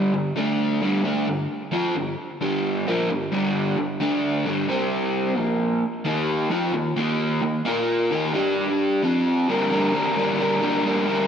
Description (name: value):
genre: rock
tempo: 132 BPM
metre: 4/4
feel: straight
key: G minor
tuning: A4 = 439 Hz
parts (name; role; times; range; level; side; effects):
- crunchy overdriven guitar; solo; 0.0-11.3 s; G2 to Bb4; -20 LUFS; equal; tape echo
room: wet lush hall reverb, RT60 2.1 s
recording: big arena sound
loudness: -20 LUFS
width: side -8 dB against mid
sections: 0.0-9.5 A section; 9.5-11.3 B section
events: none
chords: 0.4 D5; 0.8 Gm; 4.0 D5; 4.5 G5; 4.7 C5; 5.4 Bb5; 6.1 Eb5; 7.7 Bb5; 8.1 Eb5; 8.3 G5; 9.0 F5; 9.5 Gm